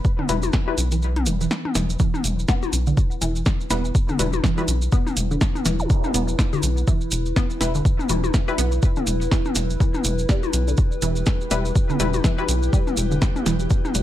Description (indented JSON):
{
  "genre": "minimal techno",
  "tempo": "123 BPM",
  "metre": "4/4",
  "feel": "swing 58% on 16ths",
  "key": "E minor",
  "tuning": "A4 = 440 Hz",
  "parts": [
    { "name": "electronic kick drum", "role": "drums", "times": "0.0-13.8 s", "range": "none", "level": "-20 LUFS", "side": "equal", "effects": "none" },
    { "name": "maracas", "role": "percussion", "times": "0.0-14.0 s", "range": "none", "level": "-31 LUFS", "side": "right 3 dB", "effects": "none" },
    { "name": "flickering grainy texture", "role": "texture", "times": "0.0-2.0, 10.6-14.0 s", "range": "G3 to B4", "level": "-38 LUFS", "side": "equal", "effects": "built-in reverb, sidechain pumping" },
    { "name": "resonant blip pluck", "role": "riff", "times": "0.2-14.0 s", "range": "D3 to B3", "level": "-28 LUFS", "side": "right 1 dB", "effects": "phaser, cassette tape, sidechain pumping, ping-pong delay" },
    { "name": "electronic toms", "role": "percussion", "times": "0.2-13.9 s", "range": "none", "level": "-28 LUFS", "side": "left 4 dB", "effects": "overdrive, tape echo" },
    { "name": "filtered dub chord stab", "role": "stabs", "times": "0.3-0.7, 3.7-4.6, 7.6-8.5, 11.5-12.4 s", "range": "G3 to B4", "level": "-30 LUFS", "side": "left 4 dB", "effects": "chorus, tape echo" },
    { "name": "rubbery square bass", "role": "bass", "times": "0.3-14.0 s", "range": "E1 to B1", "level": "-23 LUFS", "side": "equal", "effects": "sidechain pumping" },
    { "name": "punchy analog drum machine", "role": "drums", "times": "0.3-14.0 s", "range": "hi-hat, snare drum", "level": "-28 LUFS", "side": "equal", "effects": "none" },
    { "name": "warbly tape-like pad", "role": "texture", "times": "2.3-14.0 s", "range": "E4 to B4", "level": "-31 LUFS", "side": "equal", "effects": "chorus, built-in reverb, sidechain pumping" },
    { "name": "zap", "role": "sound effects", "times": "5.8-5.9 s", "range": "none", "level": "-31 LUFS", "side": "right 1 dB", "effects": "none" }
  ],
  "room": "digital ambience",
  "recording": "none",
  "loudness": "-19 LUFS",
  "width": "side -13 dB against mid",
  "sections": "0.0-2.0 A section; 2.0-14.0 B section",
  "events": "kick drops out 1.0-2.0; drop 2.0-14.0",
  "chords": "0.0 Em"
}